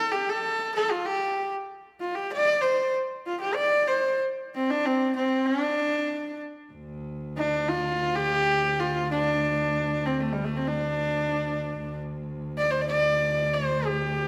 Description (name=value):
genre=mongolian traditional, Mongolian folk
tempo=95 BPM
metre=4/4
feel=straight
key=D yu mode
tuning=A4 = 445 Hz
part: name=bright horsehead fiddle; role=melody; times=0.0-14.3 s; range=G3 to D5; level=-27 LUFS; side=equal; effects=none
part: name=rich cello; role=drone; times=6.7-14.3 s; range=D2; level=-34 LUFS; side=equal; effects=none
room=wet scoring stage reverb, RT60 1.8 s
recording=none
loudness=-26 LUFS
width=mono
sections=0.0-6.7 A section; 6.7-14.3 B section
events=none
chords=none